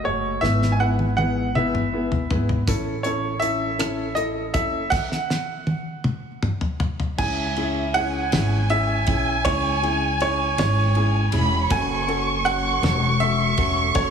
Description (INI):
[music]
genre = six-eight pop ballad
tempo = 53 BPM (dotted quarters)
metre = 6/8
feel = straight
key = C# minor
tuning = A4 = 440 Hz
[part]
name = bright grand piano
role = melody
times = 0.0-14.1 s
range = C#5 to G#5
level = -25 LUFS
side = right 3 dB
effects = none
[part]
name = clear upright piano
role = accompaniment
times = 0.0-14.1 s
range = A3 to A4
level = -27 LUFS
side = left 3 dB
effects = none
[part]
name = upright bass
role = bass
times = 0.1-14.1 s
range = E1 to C#2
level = -24 LUFS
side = equal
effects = none
[part]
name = damped 70s drum kit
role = drums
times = 0.4-14.1 s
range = crash cymbal, hi-hat, kick drum, ride cymbal, rim click, snare drum, toms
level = -27 LUFS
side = equal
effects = none
[part]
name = dark studio violin section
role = second line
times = 7.2-14.1 s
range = E5 to C#6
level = -25 LUFS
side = right 2 dB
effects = none
[sound]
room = moderate concert hall reverb, RT60 2.1 s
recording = heavily compressed radio sound, studio ambience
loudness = -20 LUFS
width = side -7 dB against mid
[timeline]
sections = 0.0-7.2 A section; 7.2-14.1 B section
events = drum fill 0.4-2.7, 4.9-7.2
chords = 0.4 E/G#; 2.7 A; 4.9 N.C.; 7.2 C#m; 11.7 F#m